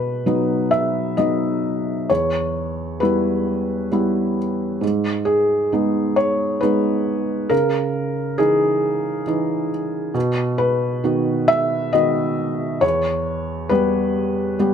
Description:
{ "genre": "neoclassical minimalist piano", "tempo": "67 BPM", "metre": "3/4", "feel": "rubato", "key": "B major", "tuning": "A4 = 438 Hz", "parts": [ { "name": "felt-muted upright piano", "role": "solo", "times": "0.0-14.7 s", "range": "E2 to E5", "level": "-18 LUFS", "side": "equal", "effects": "none" } ], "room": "light reverb", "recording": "none", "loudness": "-18 LUFS", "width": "side -8 dB against mid", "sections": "0.0-14.7 A section", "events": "none", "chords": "0.0 B; 2.1 Em; 4.8 G#m; 7.5 C#madd9; 10.2 B; 12.8 Em" }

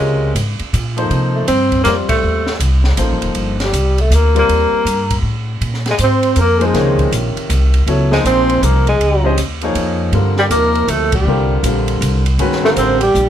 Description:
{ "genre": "modal jazz", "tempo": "160 BPM", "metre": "3/4", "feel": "swing 64% on 8ths", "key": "unclear", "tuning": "A4 = 440 Hz", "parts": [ { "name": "mellow tenor saxophone", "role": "melody", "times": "0.0-13.3 s", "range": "G3 to C4", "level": "-16 LUFS", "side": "equal", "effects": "none" }, { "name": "clear concert grand piano", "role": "accompaniment", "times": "0.0-13.0 s", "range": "C3 to Eb5", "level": "-19 LUFS", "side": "left 2 dB", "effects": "none" }, { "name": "upright bass", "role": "bass", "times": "0.0-13.3 s", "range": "Eb1 to C3", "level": "-16 LUFS", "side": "equal", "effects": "none" }, { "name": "open jazz drum kit", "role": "drums", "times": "0.4-13.3 s", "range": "hi-hat, kick drum, ride cymbal, snare drum", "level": "-23 LUFS", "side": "right 1 dB", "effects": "none" }, { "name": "warm trombone", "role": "second line", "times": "5.9-13.3 s", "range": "G4 to C5", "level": "-20 LUFS", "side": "right 4 dB", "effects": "none" } ], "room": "light reverb", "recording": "none", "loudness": "-12 LUFS", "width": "side -10 dB against mid", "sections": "0.0-13.3 A section", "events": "band accent 2.0, 11.1", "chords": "0.0 Bbm9; 1.1 Cm11; 5.6 Bbm11; 10.1 Cm11" }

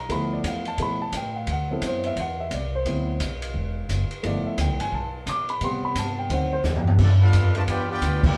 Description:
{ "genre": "jazz, big band swing", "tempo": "174 BPM", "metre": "4/4", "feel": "swing 63% on 8ths", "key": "unclear", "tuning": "A4 = 442 Hz", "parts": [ { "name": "warm baby grand piano", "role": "accompaniment", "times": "0.0-6.6 s", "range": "C3 to D6", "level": "-29 LUFS", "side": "equal", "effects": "none" }, { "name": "upright bass", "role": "bass", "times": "0.0-8.3 s", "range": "E1 to B2", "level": "-31 LUFS", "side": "equal", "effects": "none" }, { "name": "open jazz drum kit", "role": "drums", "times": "0.1-8.3 s", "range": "crash cymbal, hi-hat, kick drum, ride cymbal, snare drum, toms", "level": "-27 LUFS", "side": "equal", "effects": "none" }, { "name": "clear trumpet section", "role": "melody", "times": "7.0-8.4 s", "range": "B3 to A5", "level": "-32 LUFS", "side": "equal", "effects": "none" }, { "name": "bright trombone section", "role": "second line", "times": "7.0-8.4 s", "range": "D3 to G4", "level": "-33 LUFS", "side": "equal", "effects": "none" }, { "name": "clear trombone section", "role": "sustained chords", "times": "7.0-8.4 s", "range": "D3 to F4", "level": "-40 LUFS", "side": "equal", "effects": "none" } ], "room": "moderate studio reverb, RT60 0.7 s", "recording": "band playing live in one room", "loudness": "-24 LUFS", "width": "mono", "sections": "0.0-7.0 A section; 7.0-8.4 B section", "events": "grand piano solo 0.0-7.0; drum fill 6.6-7.0; band accent 8.2", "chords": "0.0 G13; 1.5 D13; 4.2 G13; 5.6 Am7; 6.3 D7b9; 7.0 G13" }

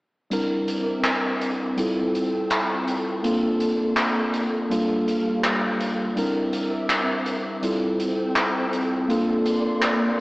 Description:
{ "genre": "vaporwave", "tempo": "82 BPM", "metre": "4/4", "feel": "straight", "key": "unclear", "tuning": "A4 = 437 Hz", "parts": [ { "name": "tine electric piano", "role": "accompaniment", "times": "0.3-10.2 s", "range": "G3 to Bb4", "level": "-23 LUFS", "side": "equal", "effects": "wide subtle chorus, tape echo" }, { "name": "soft string machine", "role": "sustained chords", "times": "0.3-10.2 s", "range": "G3 to E6", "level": "-29 LUFS", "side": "equal", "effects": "ensemble chorus" }, { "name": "huge arena drum kit", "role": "drums", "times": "0.3-10.0 s", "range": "handclaps, hi-hat", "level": "-26 LUFS", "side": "equal", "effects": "none" } ], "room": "wet plate reverb, RT60 2.2 s", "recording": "dreamy mix soaked in reverb, cassette tape, AM radio sound", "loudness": "-21 LUFS", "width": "side -22 dB against mid", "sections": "0.3-10.2 A section", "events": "none", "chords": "0.3 C9; 1.8 Fmaj9; 3.2 Bbmaj9; 4.7 Gm9; 6.2 C9; 7.6 Fmaj9; 9.1 Bbmaj9" }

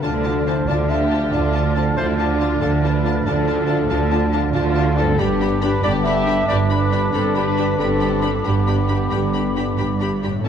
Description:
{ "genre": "cinematic, heroic adventure film score", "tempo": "93 BPM (dotted quarters)", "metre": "12/8", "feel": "straight", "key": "D dorian", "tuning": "A4 = 439 Hz", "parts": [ { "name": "warm symphonic violin section", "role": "melody", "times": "0.0-10.5 s", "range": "A5 to B5", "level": "-31 LUFS", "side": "left 6 dB", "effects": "none" }, { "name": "mellow clarinet", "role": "second line", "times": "0.0-10.5 s", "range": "D4", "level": "-31 LUFS", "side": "left 1 dB", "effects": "none" }, { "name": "mellow hollow silver concert flute", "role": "second line", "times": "0.0-10.5 s", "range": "C#6 to F6", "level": "-31 LUFS", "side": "left 3 dB", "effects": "none" }, { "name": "rich symphonic violin section", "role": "second line", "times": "0.0-10.5 s", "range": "A3 to G4", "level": "-30 LUFS", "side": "left 5 dB", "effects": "none" }, { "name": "warm oboe", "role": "second line", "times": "0.0-10.5 s", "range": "A5 to B5", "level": "-32 LUFS", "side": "left 2 dB", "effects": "none" }, { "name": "rich symphonic viola section", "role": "accompaniment", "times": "0.0-10.5 s", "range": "C#4 to G4", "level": "-28 LUFS", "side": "equal", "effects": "none" }, { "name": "mellow French horn section", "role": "sustained chords", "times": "0.0-10.5 s", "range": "A3 to C#5", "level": "-28 LUFS", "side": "left 7 dB", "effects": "none" }, { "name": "mellow trombone section", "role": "sustained chords", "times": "0.0-10.5 s", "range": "D3 to G3", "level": "-28 LUFS", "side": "right 5 dB", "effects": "none" }, { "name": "concert harp", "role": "arpeggios", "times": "0.0-10.5 s", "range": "G2 to C#5", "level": "-30 LUFS", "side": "left 9 dB", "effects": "none" }, { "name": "dark trumpet", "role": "stabs", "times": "0.0-10.5 s", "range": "F4 to E5", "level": "-24 LUFS", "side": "equal", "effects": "none" }, { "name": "rich symphonic cello section", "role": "bass", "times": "0.0-10.5 s", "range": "G2 to D3", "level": "-23 LUFS", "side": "right 4 dB", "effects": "none" }, { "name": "rich symphonic double bass section", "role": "bass", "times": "0.0-10.5 s", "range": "G1 to D2", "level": "-23 LUFS", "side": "right 3 dB", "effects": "none" } ], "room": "moderate scoring stage reverb, RT60 1.6 s", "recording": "dark, warm production", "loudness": "-16 LUFS", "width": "side -8 dB against mid", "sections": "0.0-10.5 A section", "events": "none", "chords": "0.0 Dm; 5.2 G" }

